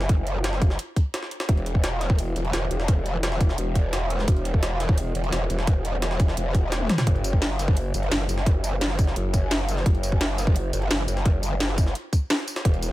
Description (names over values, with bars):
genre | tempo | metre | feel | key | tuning
dark technical drum and bass | 172 BPM | 4/4 | straight | unclear | A4 = 441 Hz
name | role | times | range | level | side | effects
growl bass | bass | 0.0-12.9 s | E1 to F#1 | -25 LUFS | equal | chorus, tube saturation
jungle sampler-style drum kit | drums | 0.0-12.9 s | hi-hat, snare drum | -32 LUFS | equal | high-pass filter on hats, high-pass filter on snare, high-pass filter on room
drum and bass drum kit | drums | 0.1-12.9 s | hi-hat, snare drum, tambourine, toms | -28 LUFS | equal | overdrive
electronic kick drum | drums | 0.1-12.7 s | none | -20 LUFS | equal | overdrive
room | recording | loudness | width
digital ambience | none | -21 LUFS | side -16 dB against mid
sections
0.0-12.9 A section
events
drum fill 6.8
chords
none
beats
| 0.09 0.44 0.79 1.14 | 1.49 1.84 2.19 2.53 | 2.88 3.23 3.58 3.93 | 4.28 4.63 4.98 5.33 | 5.67 6.02 6.37 6.72 | 7.07 7.42 7.77 8.12 | 8.46 8.81 9.16 9.51 | 9.86 10.21 10.56 10.91 | 11.26 11.60 11.95 12.30 | 12.65